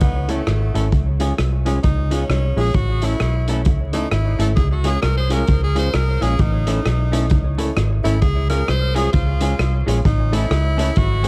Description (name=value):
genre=ska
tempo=131 BPM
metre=4/4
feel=swing 60% on 8ths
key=unclear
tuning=A4 = 436 Hz
part: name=edgy tenor saxophone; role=melody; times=0.0-11.3 s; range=A3 to C5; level=-28 LUFS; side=equal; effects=dub echo
part: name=dark upright piano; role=stabs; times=0.0-11.3 s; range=Eb4 to C#5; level=-30 LUFS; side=equal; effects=dub echo
part: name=vintage muted fingered electric bass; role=bass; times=0.0-11.3 s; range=Ab1 to C#2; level=-21 LUFS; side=equal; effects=none
part: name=vintage drum kit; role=drums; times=0.0-11.3 s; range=hi-hat, kick drum, rim click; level=-24 LUFS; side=equal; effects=none
part: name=semi-hollow electric guitar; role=accompaniment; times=0.3-11.3 s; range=Ab3 to A4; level=-29 LUFS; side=equal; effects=lush chorus
room=small room ambience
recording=dark, warm production, vinyl crackle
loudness=-19 LUFS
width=mono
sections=0.0-11.3 A section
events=tenor saxophone solo 0.0-11.3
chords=0.0 A; 0.9 Db; 2.7 A; 4.6 Db; 6.4 A; 8.2 Db; 10.1 A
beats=0.01 0.47 | 0.92 1.38 1.83 2.29 | 2.75 3.20 3.66 4.12 | 4.57 5.03 5.49 5.94 | 6.40 6.86 7.31 7.77 | 8.22 8.68 9.14 9.60 | 10.05 10.51 10.97